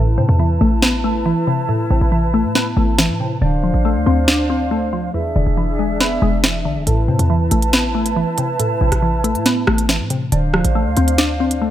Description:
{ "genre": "hip hop, drill", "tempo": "139 BPM", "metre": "4/4", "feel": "half-time", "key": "A harmonic minor", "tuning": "A4 = 445 Hz", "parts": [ { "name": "glassy wavetable pluck", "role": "accompaniment", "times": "0.0-11.7 s", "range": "E2 to D4", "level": "-19 LUFS", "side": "left 1 dB", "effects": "chorus" }, { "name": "mellow large flute ensemble", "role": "sustained chords", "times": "0.0-11.7 s", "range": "D4 to A5", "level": "-23 LUFS", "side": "right 1 dB", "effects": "none" }, { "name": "short 808-style bass", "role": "bass", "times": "0.0-11.7 s", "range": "D1 to A2", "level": "-18 LUFS", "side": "equal", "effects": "none" }, { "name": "drill drum kit", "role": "drums", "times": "0.8-11.6 s", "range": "hi-hat, rim click, snare drum", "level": "-19 LUFS", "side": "equal", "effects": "none" } ], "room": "light reverb", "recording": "none", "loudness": "-14 LUFS", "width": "side -12 dB against mid", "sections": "0.0-11.7 A section", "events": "break 0.0-6.9", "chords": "0.0 Amadd9; 3.4 Dm7; 5.1 E7; 6.9 Amadd9; 10.3 Dm7" }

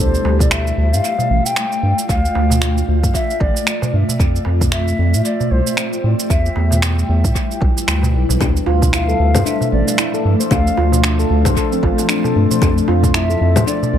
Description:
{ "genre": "organic downtempo", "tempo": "114 BPM", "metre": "4/4", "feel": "swing 58% on 16ths", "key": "D dorian", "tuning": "A4 = 442 Hz", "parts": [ { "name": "mellow bansuri", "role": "melody", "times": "0.0-14.0 s", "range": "C5 to G5", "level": "-23 LUFS", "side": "left 2 dB", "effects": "tape echo, shimmer reverb" }, { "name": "granular cloud pad", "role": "sustained chords", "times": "0.0-14.0 s", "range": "F3 to G5", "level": "-22 LUFS", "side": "left 1 dB", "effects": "built-in reverb, sidechain pumping, shimmer reverb" }, { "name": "round analog bass", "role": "bass", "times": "0.0-14.0 s", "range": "A1 to A2", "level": "-16 LUFS", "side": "equal", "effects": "tube saturation, sidechain pumping" }, { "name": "electronic shaker, finger snaps and congas", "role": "drums", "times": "0.1-13.9 s", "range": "none", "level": "-21 LUFS", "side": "equal", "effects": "overdrive, dub echo" }, { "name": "darbuka", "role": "percussion", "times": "0.2-13.9 s", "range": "none", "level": "-25 LUFS", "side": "right 3 dB", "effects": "none" }, { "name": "electronic kick drum", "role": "drums", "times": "0.4-13.1 s", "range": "none", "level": "-18 LUFS", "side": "equal", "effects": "overdrive" }, { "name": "handpan", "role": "arpeggios", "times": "8.4-14.0 s", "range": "A3 to C5", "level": "-20 LUFS", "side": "left 1 dB", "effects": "vintage 12-bit sampler grit, analog delay, shimmer reverb" } ], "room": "moderate spring reverb, RT60 1.9 s", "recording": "echo-heavy mix", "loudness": "-13 LUFS", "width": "side -10 dB against mid", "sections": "0.0-14.0 A section", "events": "none", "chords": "0.0 Dm; 4.2 Fadd9; 6.3 Em; 8.4 Dm; 12.6 Fadd9" }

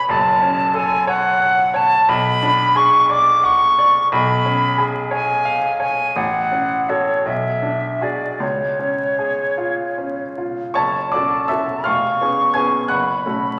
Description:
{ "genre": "classical, romantic duo for flute and grand piano", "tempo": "50-61 BPM (dotted quarters)", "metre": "6/8", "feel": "rubato", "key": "F# minor", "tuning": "A4 = 440 Hz", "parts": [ { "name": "concert flute", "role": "melody", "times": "0.0-13.6 s", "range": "C#5 to D6", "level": "-19 LUFS", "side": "equal", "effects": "none" }, { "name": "bright baby grand piano", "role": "accompaniment", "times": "0.0-13.6 s", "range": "E#1 to G#6", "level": "-23 LUFS", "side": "equal", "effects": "none" } ], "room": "wet recital hall reverb, RT60 1.4 s", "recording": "vinyl crackle", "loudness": "-18 LUFS", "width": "mono", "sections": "0.0-10.8 A section; 10.8-13.6 B section", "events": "none", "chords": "0.1 F#m; 2.1 G#m7b5/B; 4.1 C#7/B; 6.2 F#m/A; 7.3 G#m7b5/B; 8.4 C#; 10.8 F#m; 11.9 C#7/E#; 12.9 F#m" }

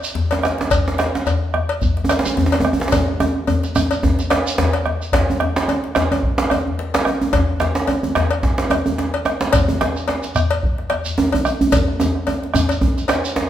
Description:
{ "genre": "west african traditional, West African drum ensemble", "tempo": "109 BPM", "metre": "4/4", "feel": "swing 56% on 16ths", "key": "none", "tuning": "none", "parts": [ { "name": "bombo", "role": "percussion", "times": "0.0-13.4 s", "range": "none", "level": "-22 LUFS", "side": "right 1 dB", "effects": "none" }, { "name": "djembe", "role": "percussion", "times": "0.0-13.5 s", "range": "none", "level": "-23 LUFS", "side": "left 3 dB", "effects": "none" }, { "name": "shekere", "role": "percussion", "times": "0.0-5.1, 9.5-13.4 s", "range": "none", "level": "-28 LUFS", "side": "right 3 dB", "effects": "none" }, { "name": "cowbell", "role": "percussion", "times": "0.3-13.2 s", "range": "none", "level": "-23 LUFS", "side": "left 3 dB", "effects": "none" }, { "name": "djembe", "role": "percussion", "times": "0.3-13.5 s", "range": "none", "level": "-19 LUFS", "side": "right 2 dB", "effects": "none" } ], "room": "wet large studio reverb, RT60 1.2 s", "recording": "band playing live in one room", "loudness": "-16 LUFS", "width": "side -11 dB against mid", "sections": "0.0-5.1 A section; 5.1-13.5 A section", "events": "drum fill 2.9-5.1, 11.7-13.5", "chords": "none" }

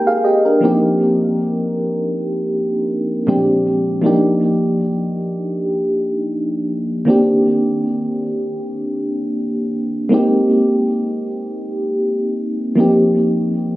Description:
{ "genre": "R&B", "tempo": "free time", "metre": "none", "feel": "none", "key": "unclear", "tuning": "A4 = 440 Hz", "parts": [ { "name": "mellow FM electric piano", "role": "solo", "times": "0.0-13.8 s", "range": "Bb2 to G5", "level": "-15 LUFS", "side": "equal", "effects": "chorus, tremolo, digital delay" } ], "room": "moderate plate reverb, RT60 3.0 s", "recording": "recorded on a phone in the room, club reverb", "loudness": "-15 LUFS", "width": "side -17 dB against mid", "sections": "0.0-13.8 A section", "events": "none", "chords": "0.0 Abmaj9; 0.6 F9sus4; 3.3 Bb13; 4.0 Ebmaj9; 7.1 Cm7; 10.1 Abmaj9; 12.8 F9sus4" }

